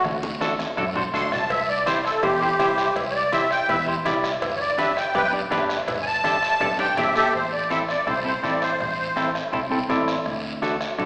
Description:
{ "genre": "latin, cumbia", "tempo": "164 BPM", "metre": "4/4", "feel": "straight", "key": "A dorian", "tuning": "A4 = 440 Hz", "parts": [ { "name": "musette accordion", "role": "melody", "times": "0.0-9.3 s", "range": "G4 to C6", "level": "-25 LUFS", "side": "equal", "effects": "none" }, { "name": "fingered electric bass", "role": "bass", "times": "0.0-11.1 s", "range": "G1 to F#2", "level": "-39 LUFS", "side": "equal", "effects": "none" }, { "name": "bombo", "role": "percussion", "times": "0.0-11.1 s", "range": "none", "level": "-32 LUFS", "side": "equal", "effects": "none" }, { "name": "congas", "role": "percussion", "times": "0.0-11.1 s", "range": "none", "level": "-40 LUFS", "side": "equal", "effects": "none" }, { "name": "guiro", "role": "percussion", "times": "0.0-11.1 s", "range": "none", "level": "-38 LUFS", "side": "equal", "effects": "none" }, { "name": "semi-hollow electric guitar", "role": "accompaniment", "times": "0.4-11.1 s", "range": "C4 to G5", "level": "-28 LUFS", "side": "equal", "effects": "none" }, { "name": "cowbell and timbales", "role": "percussion", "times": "1.5-7.2 s", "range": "none", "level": "-36 LUFS", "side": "equal", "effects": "none" } ], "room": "wet recital hall reverb, RT60 1.6 s", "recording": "recorded in a church or concert hall, small speaker sound", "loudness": "-23 LUFS", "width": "mono", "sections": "0.0-7.3 A section; 7.3-11.1 B section", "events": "accordion solo 0.0-7.3; drum fill 0.0-1.5, 6.8-7.3; clean electric guitar fill 9.5-10.3", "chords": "0.0 D; 1.5 C; 4.4 G; 7.3 Am; 10.3 D" }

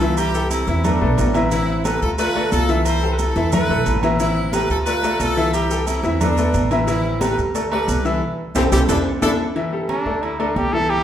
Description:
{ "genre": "latin, salsa", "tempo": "179 BPM", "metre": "4/4", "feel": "straight", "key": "A minor", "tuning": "A4 = 440 Hz", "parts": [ { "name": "brilliant horn section", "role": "melody", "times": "0.0-9.3 s", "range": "B3 to C5", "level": "-23 LUFS", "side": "left 1 dB", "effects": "none" }, { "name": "bright upright piano", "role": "accompaniment", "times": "0.0-11.0 s", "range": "E3 to E5", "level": "-22 LUFS", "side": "left 2 dB", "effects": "none" }, { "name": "upright bass", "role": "bass", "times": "0.0-11.0 s", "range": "A1 to E2", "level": "-23 LUFS", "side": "equal", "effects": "none" }, { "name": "congas", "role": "percussion", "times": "0.0-11.0 s", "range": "none", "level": "-26 LUFS", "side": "equal", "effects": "none" }, { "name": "maracas", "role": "percussion", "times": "0.0-9.3 s", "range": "none", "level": "-34 LUFS", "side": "right 6 dB", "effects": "none" }, { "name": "agogo bells and timbales", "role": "percussion", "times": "0.2-11.0 s", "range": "none", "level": "-26 LUFS", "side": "right 4 dB", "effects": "none" }, { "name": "clear trumpet", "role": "melody", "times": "9.9-11.0 s", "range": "D4 to A4", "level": "-21 LUFS", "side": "right 1 dB", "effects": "none" } ], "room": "wet large studio reverb, RT60 1.4 s", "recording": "band playing live in one room", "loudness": "-17 LUFS", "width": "side -10 dB against mid", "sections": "0.0-9.6 A section; 9.6-11.0 B section", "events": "band accent 8.2-9.6; trumpet solo 9.6-11.0", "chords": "0.2 C6; 0.8 E7sus4; 1.5 Am7; 2.2 Dmadd9; 2.9 C6; 3.5 Esus4; 4.2 Am7; 4.9 Dmadd9; 5.5 C6; 6.2 E7sus4; 6.9 Am7; 7.5 Dsus2; 8.2 C6; 8.9 E7sus4; 9.6 A5; 10.2 Dsus2" }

